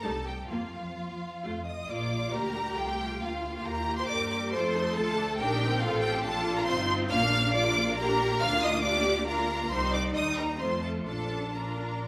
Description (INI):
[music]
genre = quick classical-period movement for string orchestra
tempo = 128-140 BPM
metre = 3/4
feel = rubato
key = Bb major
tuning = A4 = 437 Hz
[part]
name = warm studio violin section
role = melody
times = 0.0-12.1 s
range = F5 to F6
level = -34 LUFS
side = equal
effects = none
[part]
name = rich studio violin section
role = second line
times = 0.0-12.1 s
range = F4 to F5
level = -36 LUFS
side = equal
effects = none
[part]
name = clear symphonic viola section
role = accompaniment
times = 0.0-12.1 s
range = G3 to Bb4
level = -37 LUFS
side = equal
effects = none
[part]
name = clear symphonic double bass section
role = bass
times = 0.0-12.1 s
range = G1 to G2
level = -37 LUFS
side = equal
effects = none
[part]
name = warm studio cello section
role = bass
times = 0.0-12.1 s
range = F3 to Bb4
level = -36 LUFS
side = equal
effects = none
[sound]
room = wet scoring stage reverb, RT60 1.8 s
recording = none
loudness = -29 LUFS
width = mono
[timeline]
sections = 0.0-1.9 A section; 1.9-12.1 B section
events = none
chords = 0.0 Cm; 0.5 Fsus4; 1.4 F; 1.9 Bb; 3.2 Bb/D; 4.5 F; 5.8 F/A; 7.1 Bb; 8.4 Bb/D; 9.7 Cm; 10.6 F; 11.1 Bb